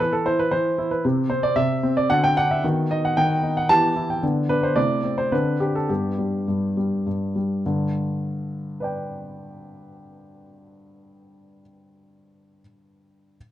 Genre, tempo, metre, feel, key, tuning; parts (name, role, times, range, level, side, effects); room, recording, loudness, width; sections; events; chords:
classical-period piano sonatina; 100-116 BPM; 3/4; rubato; G major; A4 = 440 Hz
warm baby grand piano; solo; 0.0-13.4 s; G2 to A5; -20 LUFS; equal
moderate large studio reverb, RT60 1.5 s; dark, warm production; -20 LUFS; side -12 dB against mid
0.0-7.7 A section; 7.7-11.1 B section
slowing down 3.4-7.7
0.0 E5; 1.0 Cadd9; 2.1 D7; 2.6 B/D#; 3.7 Em; 4.2 Bm/D; 4.8 Am/C; 5.3 Am11/D; 5.9 G